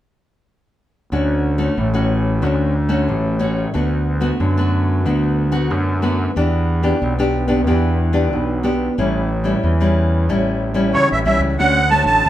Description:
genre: samba and choro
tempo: 92 BPM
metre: 4/4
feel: straight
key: D major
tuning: A4 = 440 Hz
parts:
  - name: nylon-string guitar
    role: accompaniment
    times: 1.1-12.3 s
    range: A2 to G4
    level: -19 LUFS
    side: left 1 dB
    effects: none
  - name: fuzz fingered electric bass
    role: bass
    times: 1.1-12.3 s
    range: A1 to F#2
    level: -19 LUFS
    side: equal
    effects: overdrive
  - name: musette accordion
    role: melody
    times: 10.9-12.3 s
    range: C#5 to A5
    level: -14 LUFS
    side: right 2 dB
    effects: none
room: moderate large studio reverb, RT60 1.1 s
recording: band playing live in one room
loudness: -15 LUFS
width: side -13 dB against mid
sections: 1.1-11.6 A section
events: none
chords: 1.1 Dmaj7; 3.7 Bm7/D; 6.4 Em7; 9.0 A7; 11.6 Dmaj7

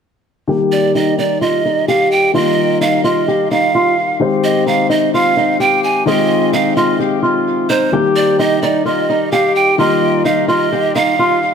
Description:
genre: hip hop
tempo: 129 BPM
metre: 4/4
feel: half-time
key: Eb major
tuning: A4 = 439 Hz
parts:
  - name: fingerpicked acoustic archtop guitar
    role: melody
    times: 0.5-11.4 s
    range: Eb4 to G4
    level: -15 LUFS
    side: equal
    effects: low-pass filter, ping-pong delay
  - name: warm concert grand piano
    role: accompaniment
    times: 0.5-11.5 s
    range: Eb3 to C5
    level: -19 LUFS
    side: left 6 dB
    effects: low-pass filter
  - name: breathy pan flute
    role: second line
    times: 0.7-11.5 s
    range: C5 to Ab5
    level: -16 LUFS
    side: right 5 dB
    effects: ping-pong delay
room: moderate scoring stage reverb, RT60 2.1 s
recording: none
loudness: -12 LUFS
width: side -6 dB against mid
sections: 0.5-11.5 A section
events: filter sweep 0.5-11.5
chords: 0.5 Eb; 4.2 Ab; 7.9 Eb

